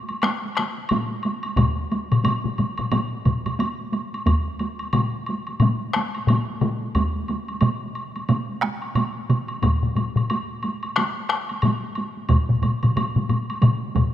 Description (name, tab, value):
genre	japanese traditional, taiko drum ensemble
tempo	90 BPM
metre	4/4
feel	swing 60% on 16ths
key	none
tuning	none
part	taiko ensemble	percussion	0.1-14.1 s	none	-27 LUFS	right 2 dB	none
part	woodblock	percussion	0.1-14.1 s	none	-30 LUFS	right 1 dB	none
part	taiko ensemble	percussion	0.2-14.1 s	none	-22 LUFS	left 3 dB	none
part	taiko ensemble	percussion	1.6-14.1 s	none	-25 LUFS	right 3 dB	none
part	taiko ensemble	percussion	1.6-14.1 s	none	-23 LUFS	equal	none
room	moderate lush hall reverb, RT60 2.6 s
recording	rough home demo mix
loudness	-21 LUFS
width	side -12 dB against mid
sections	0.0-14.1 A section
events	none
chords	none